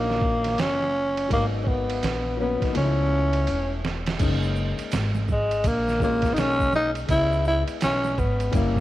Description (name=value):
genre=hip hop, jazz-hop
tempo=83 BPM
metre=4/4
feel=swing 63% on 16ths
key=F# major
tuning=A4 = 440 Hz
part: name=growling tenor saxophone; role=melody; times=0.0-8.8 s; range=G#3 to E4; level=-24 LUFS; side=equal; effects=none
part: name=dark grand piano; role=accompaniment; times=0.0-8.8 s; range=E#3 to D#5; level=-31 LUFS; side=left 8 dB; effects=none
part: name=upright bass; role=bass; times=0.0-8.8 s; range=E1 to C#2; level=-27 LUFS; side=equal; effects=none
part: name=lo-fi sampler-style drum kit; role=drums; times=0.1-8.8 s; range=crash cymbal, hi-hat, kick drum, ride cymbal, snare drum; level=-28 LUFS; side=right 2 dB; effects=none
part: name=tube shaker and congas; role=percussion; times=4.2-8.8 s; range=none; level=-39 LUFS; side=right 6 dB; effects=none
room=light reverb, small room ambience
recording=1960s-style stereo with parts hard left and right, vinyl crackle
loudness=-21 LUFS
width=side -15 dB against mid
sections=0.0-4.2 A section; 4.2-8.8 B section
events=drum fill 2.8-4.2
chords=0.0 Bmaj9 (rootless); 1.3 G#m9; 2.8 C#7alt; 4.2 F#69; 7.1 C#m9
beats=0.58 | 1.31 2.03 2.75 3.48 | 4.20 4.92 5.64 6.37 | 7.09 7.81 8.54